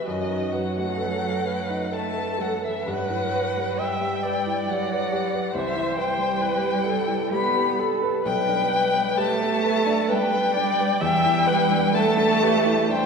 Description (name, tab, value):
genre	classical, slow romantic movement for piano quartet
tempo	66 BPM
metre	3/4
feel	uneven beats, rubato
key	G major from 8.3 s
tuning	A4 = 442 Hz
part	warm violin	melody	0.0-13.1 s	D#5 to B5	-25 LUFS	left 4 dB	none
part	warm cello	second line	0.0-13.1 s	D#3 to B3	-27 LUFS	right 3 dB	none
part	warm baby grand piano	accompaniment	0.0-13.1 s	B1 to B4	-28 LUFS	left 1 dB	none
part	warm viola	accompaniment	0.0-13.1 s	F#4 to E5	-27 LUFS	right 3 dB	none
room	wet concert hall reverb, RT60 2.4 s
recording	recorded in a church or concert hall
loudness	-20 LUFS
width	side -5 dB against mid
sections	0.0-13.1 A section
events	none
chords	0.1 B7/F#; 2.9 Em/G; 5.6 Cmaj7; 8.3 G/B; 11.0 Em7